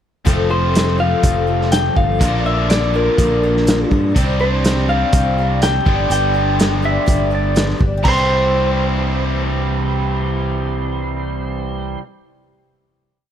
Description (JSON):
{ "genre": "folk rock and heartland rock", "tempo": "124 BPM", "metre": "4/4", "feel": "straight", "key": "C major", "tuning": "A4 = 440 Hz", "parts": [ { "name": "cranked stack guitar", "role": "riff", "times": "0.2-12.0 s", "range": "F2 to G4", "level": "-21 LUFS", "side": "equal", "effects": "overdrive" }, { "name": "picked twelve-string acoustic guitar", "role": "accompaniment", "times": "0.3-12.1 s", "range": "G2 to Bb4", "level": "-25 LUFS", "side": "left 3 dB", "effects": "none" }, { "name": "fingered electric bass", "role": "bass", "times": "0.3-11.9 s", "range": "F1 to G2", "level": "-20 LUFS", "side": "equal", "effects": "none" }, { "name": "vintage drum kit", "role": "drums", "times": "0.3-8.2 s", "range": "crash cymbal, hi-hat, kick drum, snare drum", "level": "-18 LUFS", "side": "right 1 dB", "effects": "none" }, { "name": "electric guitar through a small old amp", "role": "melody", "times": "0.5-11.9 s", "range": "Bb4 to C6", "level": "-20 LUFS", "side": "left 2 dB", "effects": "none" }, { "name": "clean lap steel guitar", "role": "second line", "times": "6.9-12.0 s", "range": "C5 to E5", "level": "-26 LUFS", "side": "right 4 dB", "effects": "none" } ], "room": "small room ambience", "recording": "none", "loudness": "-14 LUFS", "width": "side -9 dB against mid", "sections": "0.3-8.0 pre-chorus; 8.0-11.9 final chord", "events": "none", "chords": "0.3 F; 2.2 Bb; 4.2 Csus2; 5.9 G; 8.0 C", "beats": "| 0.27 0.75 1.24 1.72 | 2.21 2.70 3.19 3.67 | 4.16 4.65 5.13 5.62 | 6.11 6.59 7.08 7.57 | 8.05 8.53 9.02 9.50 | 9.98 10.46 10.94 11.43" }